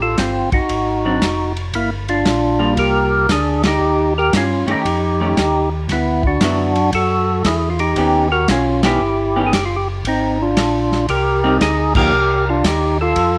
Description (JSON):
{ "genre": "soul jazz organ trio", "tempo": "115 BPM", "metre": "4/4", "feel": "swing 66% on 8ths", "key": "unclear", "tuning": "A4 = 440 Hz", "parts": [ { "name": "percussive tonewheel organ", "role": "melody", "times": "0.0-13.4 s", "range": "Bb3 to Bb4", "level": "-19 LUFS", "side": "equal", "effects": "slow rotary speaker, overdrive" }, { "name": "mellow tonewheel organ", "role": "bass", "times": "0.0-13.4 s", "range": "F1 to G2", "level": "-24 LUFS", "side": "equal", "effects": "chorus vibrato, slow rotary speaker" }, { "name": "warm soul drum kit", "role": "drums", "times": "0.2-13.3 s", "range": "crash cymbal, hi-hat, kick drum, ride cymbal, snare drum", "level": "-25 LUFS", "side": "equal", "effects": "none" }, { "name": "vintage hollow-body jazz guitar", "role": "accompaniment", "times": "1.1-12.1 s", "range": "D3 to G4", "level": "-24 LUFS", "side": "equal", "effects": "none" } ], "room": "wet spring reverb, RT60 1.2 s, small room reverb", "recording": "none", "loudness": "-17 LUFS", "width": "mono", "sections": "0.0-13.4 A section", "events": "band accent 3.5, 8.8, 11.9", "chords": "0.0 Am7b5; 0.7 Ab7#11; 1.7 Gm7; 3.8 Eb7#11; 5.9 D69; 8.0 Eb7alt; 10.1 Abmaj7; 12.1 Cmadd9" }